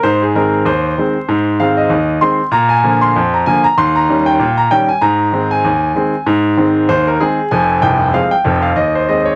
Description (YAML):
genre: ragtime piano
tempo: 96 BPM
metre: 2/4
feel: swing 56% on 16ths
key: Ab major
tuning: A4 = 440 Hz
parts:
  - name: bright concert grand piano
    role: solo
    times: 0.0-9.4 s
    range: C1 to C6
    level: -11 LUFS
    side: equal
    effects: none
room: little or no reverb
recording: dry, gritty hardware recording, vinyl crackle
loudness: -11 LUFS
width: side -31 dB against mid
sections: 0.0-9.4 A section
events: none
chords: 0.0 Ab; 2.5 Bb; 3.8 Eb7; 5.0 Ab; 7.5 Fm; 8.8 Ab/Eb